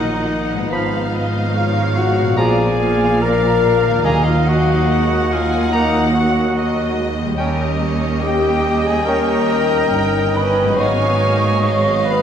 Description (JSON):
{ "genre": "classical", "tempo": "71 BPM", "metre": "4/4", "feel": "rubato", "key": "Eb minor", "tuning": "A4 = 440 Hz", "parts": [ { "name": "warm studio violin section", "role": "melody", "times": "0.0-12.2 s", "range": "D#5 to Ab5", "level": "-27 LUFS", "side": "left 3 dB", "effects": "none" }, { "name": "mellow cor anglais", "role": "second line", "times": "0.0-12.2 s", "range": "D#4 to Db5", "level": "-26 LUFS", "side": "right 2 dB", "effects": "none" }, { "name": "rich studio violin section", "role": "second line", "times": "0.0-12.2 s", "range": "Bb4 to Ab5", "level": "-28 LUFS", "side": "left 1 dB", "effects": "none" }, { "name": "silver concert flute", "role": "second line", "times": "0.0-12.2 s", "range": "D#5 to Db6", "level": "-26 LUFS", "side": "left 1 dB", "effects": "none" }, { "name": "warm studio viola section", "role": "accompaniment", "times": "0.0-12.2 s", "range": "F3 to G4", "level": "-27 LUFS", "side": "right 2 dB", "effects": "none" }, { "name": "clear trombone section", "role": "sustained chords", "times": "0.0-12.2 s", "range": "D#3 to D#4", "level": "-27 LUFS", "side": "right 4 dB", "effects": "none" }, { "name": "mellow French horn section", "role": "sustained chords", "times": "0.0-12.2 s", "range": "D#4 to Db5", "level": "-20 LUFS", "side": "left 4 dB", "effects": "none" }, { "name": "concert harp", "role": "arpeggios", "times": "0.0-12.2 s", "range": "Ab2 to Eb5", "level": "-27 LUFS", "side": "left 3 dB", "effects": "none" }, { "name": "clear trumpet", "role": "stabs", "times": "0.0-12.2 s", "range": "D5 to A#5", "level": "-27 LUFS", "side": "right 2 dB", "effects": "none" }, { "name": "rich studio cello section", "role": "bass", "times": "0.0-12.2 s", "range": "Eb2 to A#2", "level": "-22 LUFS", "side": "right 2 dB", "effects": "none" }, { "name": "warm studio double bass section", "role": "bass", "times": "0.0-12.2 s", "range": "G1 to Eb2", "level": "-23 LUFS", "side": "right 3 dB", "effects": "none" }, { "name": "warm clarinet", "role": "second line", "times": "0.7-11.1 s", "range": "Eb5 to Cb6", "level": "-28 LUFS", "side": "equal", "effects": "none" }, { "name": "warm bassoon", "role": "accompaniment", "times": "0.7-11.1 s", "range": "F3 to Db4", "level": "-28 LUFS", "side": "right 1 dB", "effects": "none" }, { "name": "timpani", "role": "percussion", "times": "4.1-5.3 s", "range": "Eb3", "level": "-23 LUFS", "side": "right 2 dB", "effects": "none" } ], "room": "wet recital hall reverb, RT60 1.8 s", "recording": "minimal, uncompressed stereo recording", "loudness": "-14 LUFS", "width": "side -8 dB against mid", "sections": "0.0-12.2 A section", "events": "none", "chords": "0.0 Bmaj7; 0.7 Fdim/Ab; 2.4 Bb7; 4.0 Ebm; 7.4 Eb7; 10.8 Abm7" }